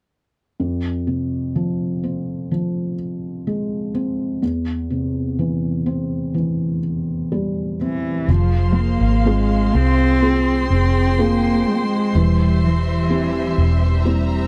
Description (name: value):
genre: pop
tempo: 62 BPM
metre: 4/4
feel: straight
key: F harmonic minor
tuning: A4 = 441 Hz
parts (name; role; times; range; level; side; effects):
- felt-muted upright piano; accompaniment; 0.6-14.5 s; E2 to Ab4; -24 LUFS; equal; none
- dark cello; melody; 7.8-14.1 s; E3 to C4; -22 LUFS; equal; none
- warm studio string section; sustained chords; 8.3-14.5 s; G3 to C6; -29 LUFS; equal; none
- vintage muted fingered electric bass; bass; 8.3-14.5 s; E1 to C2; -20 LUFS; equal; none
room: light reverb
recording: dry, close 1970s-style studio recording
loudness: -20 LUFS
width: mono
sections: 0.6-8.3 A section; 8.3-14.5 B section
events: felt piano fill 14.1-14.5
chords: 0.6 Fm; 4.4 C/E; 8.3 Fm; 12.2 C/E